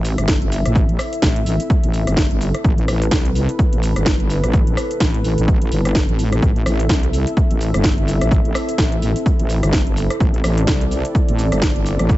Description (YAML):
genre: bass house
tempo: 127 BPM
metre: 4/4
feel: swing 58% on 16ths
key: A minor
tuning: A4 = 439 Hz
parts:
  - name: dark analog pad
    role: sustained chords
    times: 0.0-12.2 s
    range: C4 to E5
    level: -25 LUFS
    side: equal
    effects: chorus, sidechain pumping
  - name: wobble bass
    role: bass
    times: 0.0-12.2 s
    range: G1 to C2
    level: -19 LUFS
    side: equal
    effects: chorus, overdrive, sidechain pumping
  - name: house drum kit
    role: drums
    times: 0.0-12.2 s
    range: cabasa, hi-hat, rim click, snare drum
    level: -24 LUFS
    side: equal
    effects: overdrive
  - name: electronic kick drum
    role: drums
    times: 0.3-12.2 s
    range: none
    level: -18 LUFS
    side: equal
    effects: overdrive
room: little or no reverb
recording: nothing above 7.9 kHz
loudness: -15 LUFS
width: side -16 dB against mid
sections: 0.0-12.2 A section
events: none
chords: 0.0 Am